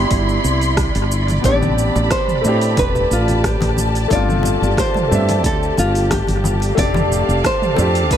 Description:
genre	sunset chillout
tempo	90 BPM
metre	4/4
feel	straight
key	unclear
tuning	A4 = 441 Hz
part	dark baby grand piano	accompaniment	0.0-8.2 s	A3 to E5	-22 LUFS	moving between left 7 dB and right 3 dB	auto-pan, tape echo
part	dark studio string section	sustained chords	0.0-8.2 s	E4 to C6	-23 LUFS	equal	none
part	woody fretless electric bass	bass	0.0-8.2 s	E1 to A2	-18 LUFS	equal	none
part	deep house drum kit	drums	0.1-8.2 s	cabasa, hi-hat, rim click, toms	-25 LUFS	right 1 dB	overdrive, tape echo
part	electronic kick drum	drums	0.1-8.2 s	none	-23 LUFS	equal	overdrive
part	nylon-string guitar	melody	1.5-8.2 s	F4 to D5	-21 LUFS	right 1 dB	tape echo
part	congas	percussion	1.6-7.9 s	none	-27 LUFS	left 2 dB	none
room	light reverb, small room ambience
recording	echo-heavy mix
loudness	-14 LUFS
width	side -10 dB against mid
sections	0.0-8.2 A section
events	none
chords	0.0 Cmaj9; 1.4 Am11; 4.1 G7sus4; 6.8 F69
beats	0.11 0.78 | 1.44 2.11 2.78 3.44 | 4.11 4.78 5.44 6.11 | 6.78 7.44 8.11

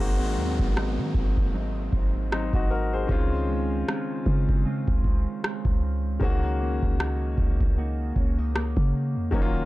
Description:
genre	contemporary R&B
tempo	77 BPM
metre	4/4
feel	swing 58% on 16ths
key	unclear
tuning	A4 = 440 Hz
part	clear baby grand piano	accompaniment	0.0-9.7 s	Eb3 to C5	-30 LUFS	left 4 dB	none
part	mellow electric guitar	arpeggios	0.0-9.7 s	Ab2 to Gb4	-33 LUFS	right 3 dB	analog chorus, tape echo
part	clean 808-style bass	bass	0.0-9.7 s	Eb1 to Eb3	-27 LUFS	equal	none
part	downlifter	sound effects	0.0-6.2 s	none	-39 LUFS	right 3 dB	none
part	booming analog drum machine	drums	0.6-9.5 s	kick drum, rim click	-25 LUFS	equal	none
room	little or no reverb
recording	dark, warm production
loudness	-23 LUFS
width	side -18 dB against mid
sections	0.0-9.7 A section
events	none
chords	0.0 Ab7; 3.1 Dbmaj7; 6.2 Gb6/Db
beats	0.75 1.53 2.31 | 3.09 3.87 4.65 5.43 | 6.21 6.99 7.77 8.55 | 9.32

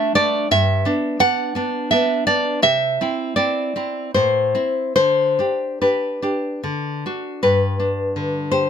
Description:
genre	romantic piece for solo classical guitar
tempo	70-86 BPM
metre	3/4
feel	rubato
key	G major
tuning	A4 = 440 Hz
part	nylon-string guitar	solo	0.0-8.7 s	G2 to F#5	-17 LUFS	equal	none
room	little or no reverb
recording	close, detailed microphones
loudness	-17 LUFS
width	side -8 dB against mid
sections	0.0-7.4 A section; 7.4-8.7 B section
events	none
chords	0.5 G; 2.6 C; 4.1 Am; 5.0 G/D; 6.6 D; 7.4 G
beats	| 0.47 1.18 1.89 | 2.62 3.35 4.13 | 4.96 5.81 6.64 | 7.44 8.16

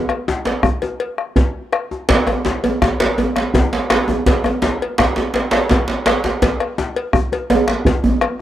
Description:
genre	west african traditional, West African drum ensemble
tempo	111 BPM (dotted quarters)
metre	12/8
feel	straight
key	none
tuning	none
part	bombo	percussion	0.1-8.4 s	none	-18 LUFS	equal	none
part	cowbell	percussion	0.1-8.4 s	none	-24 LUFS	left 4 dB	none
part	djembe	percussion	0.1-8.0 s	none	-23 LUFS	left 3 dB	none
part	djembe	percussion	0.5-8.2 s	none	-17 LUFS	right 2 dB	none
room	small room ambience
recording	dry, close 1970s-style studio recording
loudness	-15 LUFS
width	side -12 dB against mid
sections	0.0-8.4 A section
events	none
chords	none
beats	0.46 1.00 1.55 | 2.09 2.63 3.18 3.72 | 4.26 4.80 5.34 5.88 | 6.42 6.96 7.50 8.04

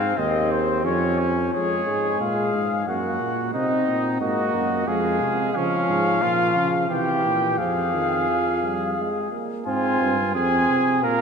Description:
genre	classical, imitative canzona for brass ensemble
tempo	89 BPM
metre	3/4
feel	straight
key	Db major, F minor from 5.6 s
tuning	A4 = 440 Hz
part	warm cornet	melody	0.0-11.2 s	C5 to Ab5	-25 LUFS	left 6 dB	none
part	warm trumpet	second line	0.0-11.2 s	C4 to Bb4	-26 LUFS	right 4 dB	none
part	warm tuba	bass	0.0-11.2 s	Eb2 to Db3	-26 LUFS	right 2 dB	none
part	mellow trombone	accompaniment	1.5-11.2 s	Eb3 to C4	-25 LUFS	right 1 dB	none
room	wet church reverb, RT60 3.4 s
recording	minimal, uncompressed stereo recording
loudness	-20 LUFS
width	side -6 dB against mid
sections	0.0-1.5 A section; 1.5-9.7 B section; 9.7-11.2 C section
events	none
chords	0.0 Ab; 0.9 Db/F; 2.9 Gb; 3.5 Cdim; 4.9 Fm; 5.6 Db; 6.2 Bbm; 6.9 C; 7.6 Fm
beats	0.18 0.85 | 1.54 2.21 2.88 | 3.54 4.21 4.88 | 5.55 6.22 6.90 | 7.59 8.28 8.98 | 9.67 10.35 11.03

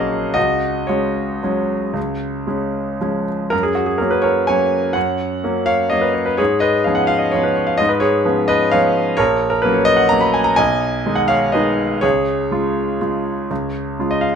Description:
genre	classical, piano waltz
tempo	110-136 BPM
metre	3/4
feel	rubato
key	F# major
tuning	A4 = 436 Hz
part	clear concert grand piano	solo	0.0-14.4 s	A#1 to B5	-15 LUFS	equal	none
room	light reverb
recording	minimal, uncompressed stereo recording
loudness	-15 LUFS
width	side -7 dB against mid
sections	0.0-3.5 A section; 3.5-14.4 B section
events	none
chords	0.4 C#sus4; 2.0 C#; 3.5 F#; 6.4 C#7/G#; 9.2 F#/A#; 10.6 G#m/B; 12.0 C#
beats	| 0.35 0.89 1.43 | 1.96 2.48 3.01 | 3.52 4.00 4.48 | 4.96 5.43 5.91 | 6.39 6.85 7.33 | 7.80 8.26 8.73 | 9.19 9.65 10.12 | 10.58 11.05 11.54 | 12.03 12.52 13.01 | 13.50 13.98

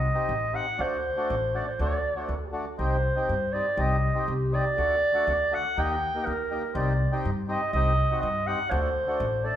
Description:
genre	klezmer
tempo	121 BPM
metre	2/4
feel	straight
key	unclear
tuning	A4 = 440 Hz
part	dark clarinet	melody	0.0-9.6 s	G4 to G5	-27 LUFS	right 1 dB	none
part	upright bass	bass	0.0-9.5 s	A1 to G2	-28 LUFS	equal	none
part	mellow accordion	accompaniment	0.1-9.6 s	A3 to A4	-32 LUFS	left 1 dB	none
room	wet large studio reverb, RT60 1.3 s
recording	band playing live in one room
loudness	-24 LUFS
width	side -11 dB against mid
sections	0.0-2.8 A section; 2.8-9.6 A section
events	none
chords	0.0 Cm; 0.8 D; 2.8 Cm; 4.8 D; 5.8 Eb; 6.7 Cm; 8.7 D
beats	0.28 | 0.78 1.28 | 1.78 2.28 | 2.78 3.28 | 3.78 4.27 | 4.77 5.26 | 5.76 6.25 | 6.75 7.24 | 7.73 8.22 | 8.71 9.20

